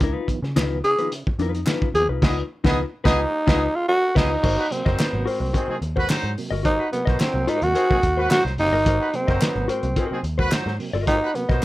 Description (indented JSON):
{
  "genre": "funk",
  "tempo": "108 BPM",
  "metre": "4/4",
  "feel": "straight",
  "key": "Ab mixolydian",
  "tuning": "A4 = 440 Hz",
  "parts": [
    { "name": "mellow electric guitar", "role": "accompaniment", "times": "0.0-11.6 s", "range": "Eb4 to Eb5", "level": "-28 LUFS", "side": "left 6 dB", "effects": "none" },
    { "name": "mellow tonewheel organ", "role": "stabs", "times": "0.0-11.5 s", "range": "Ab2 to Cb4", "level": "-33 LUFS", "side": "right 3 dB", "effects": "chorus vibrato, slow rotary speaker" },
    { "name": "vintage muted picked electric bass", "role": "bass", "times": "0.0-11.6 s", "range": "Gb1 to Db3", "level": "-26 LUFS", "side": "equal", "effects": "none" },
    { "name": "cloth-damped thuddy drum kit", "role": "drums", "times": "0.0-11.6 s", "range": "crash cymbal, hi-hat, kick drum, snare drum", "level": "-23 LUFS", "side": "equal", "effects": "none" },
    { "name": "group handclap", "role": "percussion", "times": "0.6-11.6 s", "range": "none", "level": "-32 LUFS", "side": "left 2 dB", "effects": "none" },
    { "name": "growling tenor saxophone", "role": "melody", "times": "0.8-11.6 s", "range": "Cb4 to Ab4", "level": "-21 LUFS", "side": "right 1 dB", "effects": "none" },
    { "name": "warm horn section", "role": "second line", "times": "2.2-11.6 s", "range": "Eb3 to Eb5", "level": "-27 LUFS", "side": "right 1 dB", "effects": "none" }
  ],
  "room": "little or no reverb",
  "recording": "rough home demo mix",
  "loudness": "-19 LUFS",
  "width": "side -17 dB against mid",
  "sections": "0.0-4.4 A section; 4.4-11.6 B section",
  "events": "band accent 2.2-4.4",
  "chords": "0.0 Db9; 4.4 Ab9",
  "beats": "| 0.01 0.57 1.12 1.67 | 2.23 2.78 3.33 3.88 | 4.44 4.99 5.54 6.10 | 6.65 7.20 7.75 8.31 | 8.86 9.41 9.96 10.52 | 11.07 11.62"
}